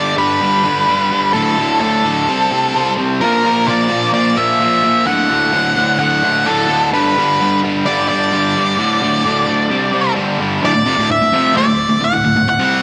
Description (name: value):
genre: rock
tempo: 129 BPM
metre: 4/4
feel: straight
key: unclear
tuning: A4 = 439 Hz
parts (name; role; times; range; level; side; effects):
- octave-fuzz lead guitar; melody; 0.0-12.8 s; A4 to F#5; -17 LUFS; equal; distortion
- crunchy overdriven guitar; riff; 0.0-12.8 s; D2 to C4; -18 LUFS; equal; slapback echo
room: wet lush hall reverb, RT60 2.8 s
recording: big arena sound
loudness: -15 LUFS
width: mono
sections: 0.0-10.6 A section; 10.6-12.8 B section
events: none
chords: 0.0 G; 1.3 D5; 2.3 C5; 3.2 Bb; 5.1 D; 6.9 G; 8.8 D5; 9.7 C5; 10.2 G5; 10.6 D